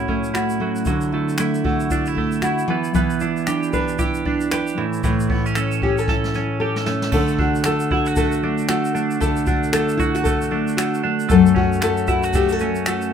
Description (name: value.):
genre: acoustic pop.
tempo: 115 BPM.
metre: 4/4.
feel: swing 60% on 16ths.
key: D major.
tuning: A4 = 440 Hz.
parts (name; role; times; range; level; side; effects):
nylon-string guitar; accompaniment; 0.0-13.1 s; F#2 to B4; -19 LUFS; left 2 dB; none.
twelve-string electric guitar; arpeggios; 0.0-13.1 s; E3 to A4; -24 LUFS; right 7 dB; none.
jazz brush drum kit; drums; 0.1-13.1 s; crash cymbal, finger snaps, kick drum, shaker, snare drum; -25 LUFS; equal; none.
room: moderate studio reverb, RT60 0.7 s.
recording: minimal, uncompressed stereo recording.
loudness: -17 LUFS.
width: side -8 dB against mid.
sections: 0.0-7.1 A section; 7.1-13.1 B section.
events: drum fill 6.1-7.1.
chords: 0.0 A6; 0.9 Dadd9; 2.7 Em7; 4.8 A; 7.1 D; 11.3 F#m.